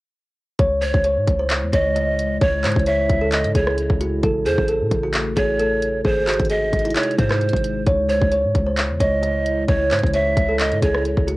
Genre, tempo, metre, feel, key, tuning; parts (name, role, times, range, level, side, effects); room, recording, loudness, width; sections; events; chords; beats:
hip hop, trap; 132 BPM; 4/4; half-time; C# harmonic minor; A4 = 442 Hz
kalimba; melody; 0.6-11.4 s; D#4 to D#5; -21 LUFS; equal; cassette tape
dark analog pad; sustained chords; 1.2-11.4 s; B#2 to E4; -28 LUFS; left 1 dB; chorus
warm 808-style bass; bass; 0.6-11.4 s; G#1 to A2; -24 LUFS; equal
trap drum kit; drums; 0.6-11.4 s; handclaps, hi-hat, kick drum, rim click; -22 LUFS; equal; cassette tape
breathy large pan pipes; second line; 0.8-11.0 s; B#4 to E5; -24 LUFS; right 2 dB; tape echo
little or no reverb; home recording on cassette; -17 LUFS; side -20 dB against mid
0.6-11.4 A section
0.6 C#m; 4.2 A; 6.0 G#; 7.9 C#m
| 0.59 1.05 1.50 1.96 | 2.41 2.87 3.32 3.78 | 4.23 4.68 5.14 5.59 | 6.05 6.50 6.96 7.41 | 7.87 8.32 8.78 9.23 | 9.69 10.14 10.59 11.05